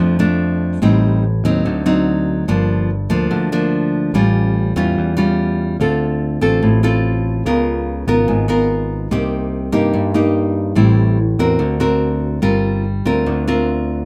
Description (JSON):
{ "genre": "bossa nova", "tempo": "145 BPM", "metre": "4/4", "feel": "straight", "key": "unclear", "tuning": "A4 = 440 Hz", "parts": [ { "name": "nylon-string guitar", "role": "accompaniment", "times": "0.0-14.1 s", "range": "F2 to Bb4", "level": "-18 LUFS", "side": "equal", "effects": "none" }, { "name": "picked electric bass", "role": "bass", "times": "0.0-14.1 s", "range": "G1 to G2", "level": "-22 LUFS", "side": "equal", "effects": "none" } ], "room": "moderate studio reverb, RT60 0.5 s", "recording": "none", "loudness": "-17 LUFS", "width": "mono", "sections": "0.0-14.1 A section", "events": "none", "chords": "0.0 Bbmaj7 (rootless); 0.8 Am7b5; 1.7 D7b9; 2.5 Gm7; 4.1 A7b13; 5.8 Dm7; 7.5 Db6; 9.1 Cm7; 10.8 Am7; 11.6 Daug7; 12.4 Gm7", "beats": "0.41 | 0.82 1.24 1.65 2.07 | 2.48 2.89 3.31 3.72 | 4.14 4.55 4.97 5.38 | 5.79 6.21 6.62 7.04 | 7.45 7.87 8.28 8.70 | 9.11 9.53 9.94 10.35 | 10.77 11.18 11.60 12.01 | 12.43 12.84 13.25 13.67" }